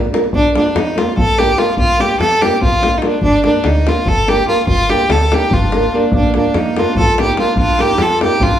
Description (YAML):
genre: balkan folk, Balkan wedding band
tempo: 290 BPM (eighths)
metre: 7/8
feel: straight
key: Bb major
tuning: A4 = 440 Hz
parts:
  - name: nylon-string guitar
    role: accompaniment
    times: 0.0-8.3 s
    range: Bb3 to Bb4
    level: -20 LUFS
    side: right 1 dB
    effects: none
  - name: woody FM bass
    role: bass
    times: 0.0-8.6 s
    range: G1 to F2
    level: -19 LUFS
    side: equal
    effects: none
  - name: davul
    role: percussion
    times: 0.0-8.5 s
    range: none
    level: -18 LUFS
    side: left 2 dB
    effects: none
  - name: rich violin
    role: melody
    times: 0.3-8.6 s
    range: D4 to A4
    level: -15 LUFS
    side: equal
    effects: none
  - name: warm clarinet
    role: second line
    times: 5.3-8.6 s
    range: Bb3 to F4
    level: -22 LUFS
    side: right 4 dB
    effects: none
room: wet large studio reverb, RT60 1.1 s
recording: band playing live in one room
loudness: -11 LUFS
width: side -10 dB against mid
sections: 0.3-8.6 A section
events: none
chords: 0.3 Bb; 3.2 Gm; 6.1 Bb